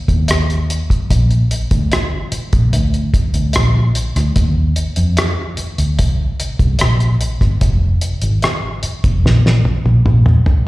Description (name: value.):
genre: lush 1970s-style soul.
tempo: 74 BPM.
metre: 4/4.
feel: straight.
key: unclear.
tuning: A4 = 440 Hz.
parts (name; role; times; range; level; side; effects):
vintage muted fingered electric bass; bass; 0.1-10.4 s; F1 to F2; -14 LUFS; equal; none.
cloth-damped thuddy drum kit; drums; 0.1-10.7 s; hi-hat, kick drum, rim click, snare drum, toms; -16 LUFS; equal; slapback echo.
room: light reverb.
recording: live gig heard through the venue's PA, recital hall reverb.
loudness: -13 LUFS.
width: side -19 dB against mid.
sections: 0.0-10.7 A section.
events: drum fill 9.2-10.7.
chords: none.